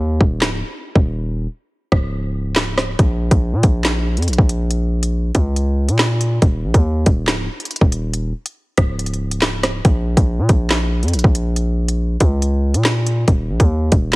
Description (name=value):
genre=hip hop, drill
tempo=140 BPM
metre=4/4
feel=half-time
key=Bb minor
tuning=A4 = 440 Hz
part: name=distorted 808-style bass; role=bass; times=0.0-14.2 s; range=Db1 to Bb2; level=-18 LUFS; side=equal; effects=distortion
part: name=drill drum kit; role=drums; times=0.2-14.2 s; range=handclaps, hi-hat, kick drum, rim click, snare drum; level=-16 LUFS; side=equal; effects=vintage 12-bit sampler grit
room=little or no reverb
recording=heavily compressed radio sound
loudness=-15 LUFS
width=side -22 dB against mid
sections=0.0-14.2 A section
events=break 0.0-3.0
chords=none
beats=0.42 0.85 | 1.28 1.71 2.13 2.56 | 2.99 3.42 3.85 4.28 | 4.71 5.13 5.56 5.99 | 6.42 6.85 7.28 7.71 | 8.13 8.56 8.99 9.42 | 9.85 10.28 10.71 11.13 | 11.56 11.99 12.42 12.85 | 13.28 13.71 14.13